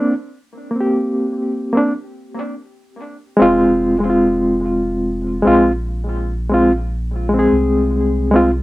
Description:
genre	trip hop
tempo	73 BPM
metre	4/4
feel	swing 59% on 16ths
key	F dorian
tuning	A4 = 437 Hz
part	barky reed electric piano	accompaniment	0.0-8.5 s	Ab3 to Ab4	-14 LUFS	equal	tremolo, cassette tape, tape echo
part	soft dub sub bass	bass	3.4-8.6 s	F1 to C2	-22 LUFS	equal	none
room	moderate studio reverb, RT60 0.5 s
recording	home recording on cassette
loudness	-14 LUFS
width	side -18 dB against mid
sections	0.0-3.4 A section; 3.4-8.6 B section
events	none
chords	0.0 Bbsus2; 3.4 Fm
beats	| 0.11 0.93 1.75 2.58 | 3.40 4.22 5.04 5.86 | 6.68 7.51 8.33

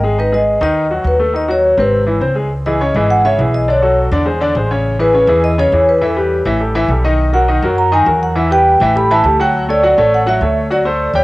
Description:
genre	jazz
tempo	205 BPM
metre	4/4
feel	straight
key	C# minor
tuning	A4 = 440 Hz
part	vibraphone with medium mallets	melody	0.0-11.2 s	A4 to B5	-14 LUFS	equal	cassette tape
part	bright upright piano	accompaniment	0.0-11.2 s	B#2 to G5	-16 LUFS	left 1 dB	cassette tape
part	upright bass	bass	0.0-11.2 s	G#1 to F#2	-18 LUFS	equal	none
room	moderate spring reverb, RT60 2.6 s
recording	home recording on cassette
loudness	-11 LUFS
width	side -20 dB against mid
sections	0.0-2.5 A section; 2.5-11.2 B section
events	none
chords	0.2 G#m7; 1.3 G#7#9; 1.9 G#aug; 2.5 C#m9; 3.7 Bm9; 4.3 Eaug7; 4.9 Amaj9; 6.0 Em; 6.6 Asus2; 7.2 B6; 8.4 Em; 8.9 A5; 9.5 Dmaj9; 10.7 D7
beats	| 0.18 0.47 0.76 1.05 | 1.34 1.64 1.93 2.22 | 2.51 2.81 3.10 3.39 | 3.68 3.98 4.27 4.56 | 4.85 5.14 5.44 5.73 | 6.02 6.31 6.61 6.90 | 7.19 7.48 7.78 8.07 | 8.36 8.65 8.95 9.24 | 9.53 9.83 10.12 10.41 | 10.71 11.00

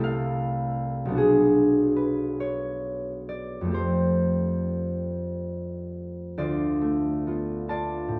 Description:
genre	classical, solo harp piece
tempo	43-55 BPM (dotted quarters)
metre	6/8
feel	rubato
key	F lydian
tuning	A4 = 442 Hz
part	concert harp	solo	0.0-8.2 s	B1 to A5	-26 LUFS	equal	none
room	moderate recital hall reverb, RT60 1.6 s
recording	nothing above 10.5 kHz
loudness	-26 LUFS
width	mono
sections	0.0-6.4 A section; 6.4-8.2 B section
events	none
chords	0.0 Fmaj7/C; 1.2 Bm6; 3.7 Fadd9; 6.4 Dm6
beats	0.03 | 1.16 2.39 | 3.73 5.04 | 6.37 7.69

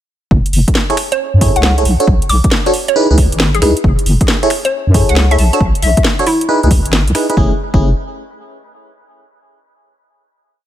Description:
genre	UK garage, two-step garage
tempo	136 BPM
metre	4/4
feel	swing 67% on 16ths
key	F# minor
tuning	A4 = 436 Hz
part	deep soft wobble bass	bass	0.3-7.9 s	F#1 to F#2	-12 LUFS	equal	chorus, sidechain pumping
part	electronic kick drum	drums	0.3-7.8 s	none	-14 LUFS	equal	studio reverb
part	garage drum kit	drums	0.5-7.4 s	finger snaps, hi-hat, snare drum	-18 LUFS	equal	studio reverb
part	FM electric piano	stabs	0.9-7.9 s	A3 to C#5	-17 LUFS	equal	chorus, phaser, dub echo
part	hollow square pluck	melody	1.1-6.6 s	E4 to D6	-19 LUFS	equal	chorus, dub echo
room	digital ambience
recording	none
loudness	-10 LUFS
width	side -12 dB against mid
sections	0.3-7.4 groove; 7.4-9.1 final chord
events	none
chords	0.3 F#m9; 1.9 Bm9; 2.7 C#m9; 3.8 F#m9; 5.4 Bm9; 6.3 C#m9; 7.4 F#m9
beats	| 0.31 0.75 1.19 1.63 | 2.08 2.52 2.96 3.40 | 3.84 4.28 4.72 5.16 | 5.61 6.05 6.49 6.93 | 7.37 7.81

